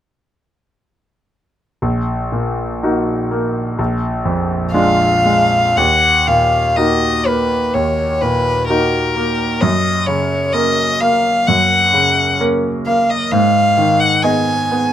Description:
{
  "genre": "classical, romantic duo for violin and grand piano",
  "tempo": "55-67 BPM",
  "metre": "4/4",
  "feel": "rubato",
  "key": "Eb minor",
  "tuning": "A4 = 440 Hz",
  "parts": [
    { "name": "bright concert grand piano", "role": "accompaniment", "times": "1.8-14.9 s", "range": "Bb1 to Eb5", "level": "-16 LUFS", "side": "right 1 dB", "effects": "none" },
    { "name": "rich violin", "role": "melody", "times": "4.7-14.9 s", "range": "Bb4 to Ab5", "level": "-14 LUFS", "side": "left 2 dB", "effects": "none" }
  ],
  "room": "light reverb",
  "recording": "close, detailed microphones",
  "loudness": "-13 LUFS",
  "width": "side -10 dB against mid",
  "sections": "1.8-5.8 A section; 5.8-14.9 B section",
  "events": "none",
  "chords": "1.8 Ebm/Bb; 3.8 Bb7; 5.8 Ebm; 9.6 Gb; 13.3 Abm",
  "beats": "| 1.82 2.82 3.79 4.73 | 5.77 6.78 7.74 8.69 | 9.62 10.54 11.48 12.41 | 13.33 14.24"
}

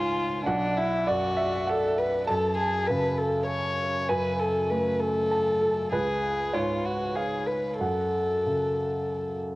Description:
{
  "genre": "neoclassical piano and strings",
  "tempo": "98 BPM",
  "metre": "3/4",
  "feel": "rubato",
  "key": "F# minor",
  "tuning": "A4 = 439 Hz",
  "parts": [
    { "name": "dark violin", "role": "melody", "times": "0.0-9.4 s", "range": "D4 to C#5", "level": "-26 LUFS", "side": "left 1 dB", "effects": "cassette tape" },
    { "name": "warm upright piano", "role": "accompaniment", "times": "0.0-9.6 s", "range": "B1 to A5", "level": "-28 LUFS", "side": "right 2 dB", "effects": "cassette tape" }
  ],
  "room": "moderate spring reverb, RT60 2.4 s",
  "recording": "home recording on cassette",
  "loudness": "-24 LUFS",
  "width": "side -19 dB against mid",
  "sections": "0.0-9.6 A section",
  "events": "none",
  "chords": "0.5 B5; 2.3 F#madd9; 5.9 C#7; 7.8 F#m",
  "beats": "| 0.46 1.07 1.67 | 2.27 2.87 3.48 | 4.08 4.69 5.30 | 5.91 6.53 7.16 | 7.80 8.45 9.09"
}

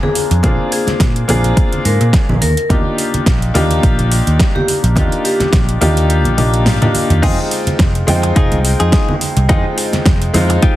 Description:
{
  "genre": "nu-disco, nu disco",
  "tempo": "106 BPM",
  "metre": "4/4",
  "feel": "swing 55% on 16ths",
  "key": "unclear",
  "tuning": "A4 = 440 Hz",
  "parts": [
    { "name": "vibraphone with medium hard mallets", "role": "melody", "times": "0.0-5.4 s", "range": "G4 to Bb4", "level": "-22 LUFS", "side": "left 2 dB", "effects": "digital delay" },
    { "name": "bright baby grand piano", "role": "accompaniment", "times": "0.0-10.8 s", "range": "Ab3 to G5", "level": "-18 LUFS", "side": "left 1 dB", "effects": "ping-pong delay" },
    { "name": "congas", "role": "percussion", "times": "0.0-10.5 s", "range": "none", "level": "-23 LUFS", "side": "right 2 dB", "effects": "none" },
    { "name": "pop drum kit", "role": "drums", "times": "0.2-10.8 s", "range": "crash cymbal, hi-hat, snare drum, toms", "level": "-19 LUFS", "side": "equal", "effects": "overdrive" },
    { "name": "picked electric bass", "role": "bass", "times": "0.3-10.6 s", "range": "F1 to Bb2", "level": "-15 LUFS", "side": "equal", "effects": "tube saturation" },
    { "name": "electronic kick drum", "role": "drums", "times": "0.4-10.8 s", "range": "none", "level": "-14 LUFS", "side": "equal", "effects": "overdrive" },
    { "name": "direct-recorded clean electric guitar", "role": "riff", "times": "7.2-10.8 s", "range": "Eb4 to Ab4", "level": "-21 LUFS", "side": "left 3 dB", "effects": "lush chorus, ping-pong delay" }
  ],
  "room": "light reverb",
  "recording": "heavily compressed radio sound, multiband compression",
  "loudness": "-11 LUFS",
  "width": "side -15 dB against mid",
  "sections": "0.0-10.8 A section",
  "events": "kick drops out 6.1-7.2; drum fill 6.4-7.2",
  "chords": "0.0 Bb7; 2.4 Ebmaj7; 7.2 Fm7",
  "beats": "| 0.44 1.00 1.57 2.14 | 2.70 3.27 3.83 4.40 | 4.97 5.53 6.10 6.67 | 7.23 7.80 8.36 8.93 | 9.49 10.06 10.63"
}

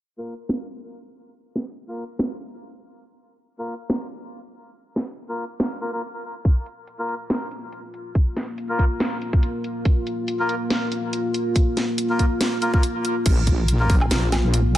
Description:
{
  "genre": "deep dubstep",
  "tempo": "141 BPM",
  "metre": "4/4",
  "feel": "swing 55% on 16ths, half-time",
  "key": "unclear",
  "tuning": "A4 = 441 Hz",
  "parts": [
    { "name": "melodica", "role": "stabs", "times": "0.2-14.0 s", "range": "Bb3 to Bb4", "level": "-29 LUFS", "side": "left 1 dB", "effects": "low-pass filter, dub echo" },
    { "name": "garage drum kit", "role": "drums", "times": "0.5-14.8 s", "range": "crash cymbal, hi-hat, snare drum, woodblock", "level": "-26 LUFS", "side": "equal", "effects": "none" },
    { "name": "deep dark ambient pad", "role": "sustained chords", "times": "7.9-14.8 s", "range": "Bb3 to F4", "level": "-26 LUFS", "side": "equal", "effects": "chorus, built-in reverb" },
    { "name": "electronic kick drum", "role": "drums", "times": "6.4-14.0 s", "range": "none", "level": "-18 LUFS", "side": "equal", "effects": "none" },
    { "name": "wobble bass", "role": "bass", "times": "13.3-14.8 s", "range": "Bb1", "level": "-20 LUFS", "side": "equal", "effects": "chorus" }
  ],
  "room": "light reverb",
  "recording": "low-pass filter",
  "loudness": "-21 LUFS",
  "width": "side -13 dB against mid",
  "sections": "0.0-13.3 A section; 13.3-14.8 B section",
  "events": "filter sweep on melodica 0.0-13.3; filter sweep 0.0-13.3",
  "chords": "0.0 Bb5",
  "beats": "0.07 0.49 0.92 | 1.34 1.77 2.20 2.62 | 3.05 3.47 3.90 4.32 | 4.75 5.17 5.60 6.03 | 6.45 6.88 7.30 7.73 | 8.15 8.58 9.00 9.43 | 9.86 10.28 10.71 11.13 | 11.56 11.98 12.41 12.83 | 13.26 13.69 14.11 14.54"
}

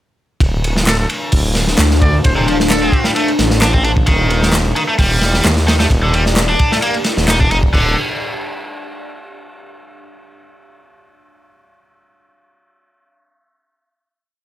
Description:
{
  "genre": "breakbeat, breaks",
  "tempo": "131 BPM",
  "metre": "4/4",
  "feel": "straight",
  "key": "D phrygian",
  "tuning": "A4 = 445 Hz",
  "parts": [
    { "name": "deep dark ambient pad", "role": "sustained chords", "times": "1.1-8.0 s", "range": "D4 to F5", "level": "-23 LUFS", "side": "left 3 dB", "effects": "chorus, built-in reverb, sidechain pumping" },
    { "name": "detuned saw bass", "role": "bass", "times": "0.4-8.0 s", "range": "D1 to Eb2", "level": "-16 LUFS", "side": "equal", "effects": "none" },
    { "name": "crunchy breakbeat drum kit", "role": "drums", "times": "0.4-7.8 s", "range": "crash cymbal, hi-hat, kick drum, ride cymbal, snare drum", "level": "-16 LUFS", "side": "equal", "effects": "none" },
    { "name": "trumpet with metal mute", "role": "melody", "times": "0.9-3.1 s", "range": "A4 to D5", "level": "-23 LUFS", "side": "right 1 dB", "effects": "AM radio sound, digital delay" },
    { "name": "electronic handclaps", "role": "drums", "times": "0.9-7.4 s", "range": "none", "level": "-21 LUFS", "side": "equal", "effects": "none" },
    { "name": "cranked stack guitar", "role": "riff", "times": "2.4-8.0 s", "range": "C3 to Eb4", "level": "-18 LUFS", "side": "equal", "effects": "overdrive, digital delay" }
  ],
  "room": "light reverb",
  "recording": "none",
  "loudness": "-12 LUFS",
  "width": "side -14 dB against mid",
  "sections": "0.4-7.7 groove; 7.7-9.6 final chord",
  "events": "none",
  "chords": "0.4 Dm7; 4.1 Ebmaj7; 7.7 Dm7",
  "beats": "| 0.41 0.87 1.33 1.79 | 2.25 2.70 3.16 3.62 | 4.08 4.54 4.99 5.45 | 5.91 6.37 6.83 7.28 | 7.74"
}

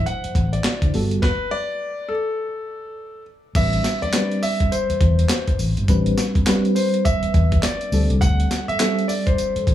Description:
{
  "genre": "R&B, new jack swing",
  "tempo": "103 BPM",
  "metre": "4/4",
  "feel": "swing 61% on 16ths",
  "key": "A dorian",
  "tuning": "A4 = 439 Hz",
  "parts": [
    { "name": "warm concert grand piano", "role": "melody", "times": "0.0-9.7 s", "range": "A4 to F#5", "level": "-25 LUFS", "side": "left 1 dB", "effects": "tape echo" },
    { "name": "mellow FM electric piano", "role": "accompaniment", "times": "0.0-9.7 s", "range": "F#3 to C5", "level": "-24 LUFS", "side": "equal", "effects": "chorus, tremolo" },
    { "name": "vintage muted fingered electric bass", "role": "bass", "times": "0.0-9.7 s", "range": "G1 to D3", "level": "-20 LUFS", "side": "equal", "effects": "none" },
    { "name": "breakbeat sampler-style drum kit", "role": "drums", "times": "0.1-9.7 s", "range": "crash cymbal, handclaps, hi-hat, kick drum, snare drum, tambourine", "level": "-21 LUFS", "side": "equal", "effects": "none" }
  ],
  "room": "little or no reverb",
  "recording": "small room ambience",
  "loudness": "-18 LUFS",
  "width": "side -12 dB against mid",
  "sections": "0.0-3.6 A section; 3.6-9.7 B section",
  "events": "stop 1.2-3.6",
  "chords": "0.0 D9; 0.9 Gmaj9; 3.6 Am11; 7.9 D7sus4",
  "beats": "0.06 0.64 | 1.22 1.81 2.39 2.97 | 3.55 4.14 4.72 5.30 | 5.88 6.47 7.05 7.63 | 8.21 8.80 9.38"
}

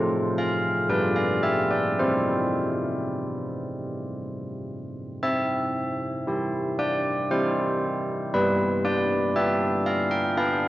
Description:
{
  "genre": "classical, tune for church bells",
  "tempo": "55-59 BPM",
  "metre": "3/4",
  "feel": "straight",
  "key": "C major",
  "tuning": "A4 = 441 Hz",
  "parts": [
    { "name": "carillon bells", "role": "solo", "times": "0.0-10.7 s", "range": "G3 to G5", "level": "-23 LUFS", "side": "equal", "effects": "none" }
  ],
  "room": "wet church reverb, RT60 3.0 s",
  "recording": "worn, warbling old tape, cassette tape, warbly pitch drift, nothing above 7.7 kHz",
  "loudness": "-23 LUFS",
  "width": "side -15 dB against mid",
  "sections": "0.0-5.2 A section; 5.2-10.7 B section",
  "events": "none",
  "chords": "0.0 F/A; 0.9 G7; 2.0 C; 8.3 G7",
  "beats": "0.90 | 1.98 3.07 4.15 | 5.23 6.26 7.29 | 8.32 9.35 10.37"
}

